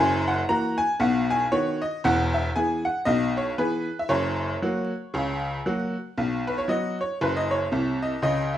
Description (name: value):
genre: jazz, stride piano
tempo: 116 BPM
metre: 4/4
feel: swing 60% on 8ths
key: B major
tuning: A4 = 440 Hz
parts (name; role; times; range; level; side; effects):
- tack piano; solo; 0.0-8.6 s; E1 to A#5; -22 LUFS; equal; none
room: moderate large studio reverb, RT60 0.9 s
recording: band playing live in one room, vinyl crackle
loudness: -23 LUFS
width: side -11 dB against mid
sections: 0.0-6.2 A section; 6.2-8.6 B section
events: none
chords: 0.0 F#7; 1.0 B; 2.0 E; 4.1 F#; 6.2 B5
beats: 0.49 1.00 1.52 | 2.04 2.56 3.07 3.59 | 4.11 4.62 5.14 5.66 | 6.17 6.69 7.21 7.73 | 8.25